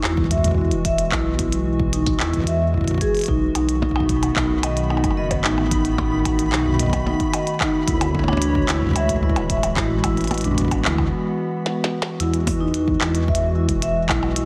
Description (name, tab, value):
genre	IDM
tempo	111 BPM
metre	4/4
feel	straight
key	E major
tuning	A4 = 440 Hz
part	warbly tape-like pad	sustained chords	0.0-14.5 s	D#3 to C#5	-28 LUFS	equal	chorus, built-in reverb
part	vibraphone with medium mallets	arpeggios	0.0-14.4 s	D4 to E5	-26 LUFS	equal	digital delay, shimmer reverb
part	dark detuned saw bass	bass	0.0-14.5 s	D1 to E2	-26 LUFS	equal	none
part	glitchy drum kit	drums	0.0-14.5 s	handclaps, hi-hat, percussion blips, snare drum	-28 LUFS	equal	studio reverb, digital delay
part	electronic kick drum	drums	0.2-14.2 s	none	-27 LUFS	equal	studio reverb
part	flickering grainy texture	texture	4.1-11.1 s	B5	-37 LUFS	equal	built-in reverb, shimmer reverb
room	light reverb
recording	none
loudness	-20 LUFS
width	mono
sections	0.0-12.2 A section; 12.2-14.5 B section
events	break 11.1-12.2; drum fill 11.7-12.2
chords	0.0 Eadd9; 3.6 B7; 7.9 Dmaj9#11; 12.2 Eadd9